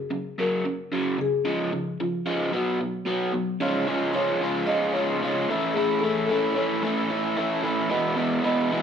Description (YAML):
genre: rock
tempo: 111 BPM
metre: 4/4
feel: straight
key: F# major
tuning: A4 = 440 Hz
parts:
  - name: marimba with soft mallets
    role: melody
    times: 0.0-8.8 s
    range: E#4 to D#5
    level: -28 LUFS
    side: left 2 dB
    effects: none
  - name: crunchy overdriven guitar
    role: riff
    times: 0.0-8.8 s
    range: E2 to E#4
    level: -24 LUFS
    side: right 1 dB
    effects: none
room: moderate large studio reverb, RT60 0.9 s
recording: band playing live in one room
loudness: -23 LUFS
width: side -7 dB against mid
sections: 0.0-3.6 A section; 3.6-8.8 B section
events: none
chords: 0.0 F#; 1.4 C#; 2.5 B5; 3.6 C#; 5.5 A; 7.9 E